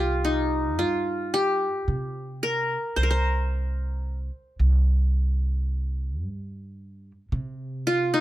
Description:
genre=Turkish makam ensemble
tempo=110 BPM (eighths)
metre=10/8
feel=straight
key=C makam nihavent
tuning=A4 = 440 Hz
part: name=qanun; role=melody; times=0.0-8.2 s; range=Eb4 to C5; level=-24 LUFS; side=left 1 dB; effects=none
part: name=upright bass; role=bass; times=0.0-8.2 s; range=C2 to C3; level=-25 LUFS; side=right 1 dB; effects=none
room=little or no reverb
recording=close, detailed microphones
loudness=-23 LUFS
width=side -15 dB against mid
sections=0.0-8.2 A section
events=none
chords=none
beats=0.25 0.79 1.34 1.88 2.42 | 2.97 3.51 4.06 4.60 5.14 5.69 6.23 6.78 7.32 7.86

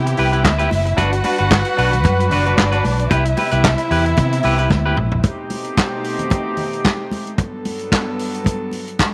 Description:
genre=disco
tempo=112 BPM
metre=4/4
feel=swing 56% on 16ths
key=G major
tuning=A4 = 440 Hz
part: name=warm studio violin section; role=second line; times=0.0-5.2 s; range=D4 to G5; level=-25 LUFS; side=equal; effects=none
part: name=warm studio string section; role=sustained chords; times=0.0-9.1 s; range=G2 to B4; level=-26 LUFS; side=equal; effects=none
part: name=fingered electric bass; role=bass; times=0.0-5.2 s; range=F#1 to C3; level=-21 LUFS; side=equal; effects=none
part: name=semi-hollow electric guitar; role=accompaniment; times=0.1-5.2 s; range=D4 to B4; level=-24 LUFS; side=equal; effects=none
part: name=warm soul drum kit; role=drums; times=0.1-9.1 s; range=handclaps, hi-hat, kick drum, snare drum, toms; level=-22 LUFS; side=equal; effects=none
part: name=congas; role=percussion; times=0.4-9.1 s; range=none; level=-30 LUFS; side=equal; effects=none
room=light reverb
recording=none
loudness=-18 LUFS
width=mono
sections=0.0-5.2 A section; 5.2-9.1 B section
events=drum fill 4.7-5.2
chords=0.0 Cmaj7; 1.0 Gmaj7; 3.1 Cmaj7; 5.2 B7b9b13; 7.4 Gmaj9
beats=0.44 | 0.97 1.51 2.04 2.57 | 3.11 3.64 4.17 4.71 | 5.24 5.78 6.31 6.85 | 7.38 7.92 8.46 8.99

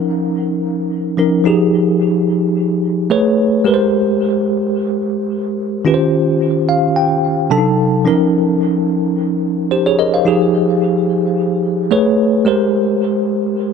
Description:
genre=amapiano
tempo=109 BPM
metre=4/4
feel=swing 55% on 16ths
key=Ab major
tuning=A4 = 441 Hz
part: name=bell-like tine electric piano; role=solo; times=0.0-13.7 s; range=C3 to A5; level=-13 LUFS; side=equal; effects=medium stereo tremolo, dub echo
room=light reverb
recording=echo-heavy mix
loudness=-13 LUFS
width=side -6 dB against mid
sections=0.0-3.7 A section; 3.7-13.7 B section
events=tine electric piano fill 6.4-8.1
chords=0.0 Db6/F; 1.5 Fm9; 3.1 Amaj9; 3.7 Abmaj9; 5.9 Eb13; 7.5 Cdim7; 8.1 Db6/F; 10.3 Fm9; 11.9 Amaj9; 12.5 Abmaj9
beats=0.35 0.90 | 1.45 2.00 2.55 3.10 | 3.65 4.20 4.75 5.30 | 5.86 6.41 6.96 7.51 | 8.06 8.61 9.16 9.71 | 10.26 10.81 11.36 11.91 | 12.46 13.01 13.56

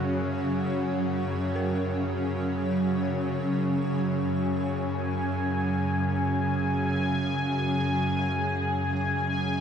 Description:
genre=dark ambient drone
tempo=free time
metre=none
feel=none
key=F# major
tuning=A4 = 440 Hz
part: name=granular cloud pad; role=sustained chords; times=0.0-9.6 s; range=F#3 to C#5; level=-32 LUFS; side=equal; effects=built-in reverb, shimmer reverb
part: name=dark detuned synth bell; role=arpeggios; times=0.0-9.6 s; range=E#4 to A#4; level=-42 LUFS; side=right 1 dB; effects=chorus, ping-pong delay
part: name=bowed-like drone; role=drone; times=0.0-9.6 s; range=F#2 to C#3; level=-27 LUFS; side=equal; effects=built-in reverb
part: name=bubbling stepped-filter texture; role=texture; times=0.0-9.6 s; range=F#4 to G#5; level=-33 LUFS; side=left 2 dB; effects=chorus, built-in reverb, shimmer reverb
room=wet cathedral reverb, RT60 4.8 s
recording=in a vast, echoing space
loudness=-25 LUFS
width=side -7 dB against mid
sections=0.0-9.6 A section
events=none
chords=0.0 F#sus2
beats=free time

